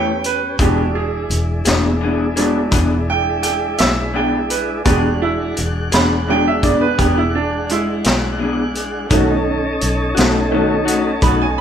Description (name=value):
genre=slow blues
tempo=56 BPM (dotted quarters)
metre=12/8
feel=straight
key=E mixolydian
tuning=A4 = 440 Hz
part: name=bright upright piano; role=accompaniment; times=0.0-11.6 s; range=D#3 to B5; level=-20 LUFS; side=right 5 dB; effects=none
part: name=electric guitar through a small old amp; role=accompaniment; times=0.0-11.5 s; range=B2 to C#5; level=-19 LUFS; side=left 3 dB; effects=harmonic tremolo
part: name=tonewheel organ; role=sustained chords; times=0.0-11.6 s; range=G#3 to F#5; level=-23 LUFS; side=left 1 dB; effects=slow rotary speaker
part: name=fingered electric bass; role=bass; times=0.0-11.6 s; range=E1 to E2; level=-22 LUFS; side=equal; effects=none
part: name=vintage drum kit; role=drums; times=0.2-11.4 s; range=hi-hat, kick drum, snare drum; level=-19 LUFS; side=equal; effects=none
room=moderate large studio reverb, RT60 1.1 s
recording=band playing live in one room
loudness=-14 LUFS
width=side -8 dB against mid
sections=0.0-11.6 A section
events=upright piano solo 0.0-11.6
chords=0.0 A7; 0.6 E7; 9.1 B7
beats=| 0.61 1.68 2.74 3.80 | 4.87 5.93 6.99 8.05 | 9.12 10.18 11.24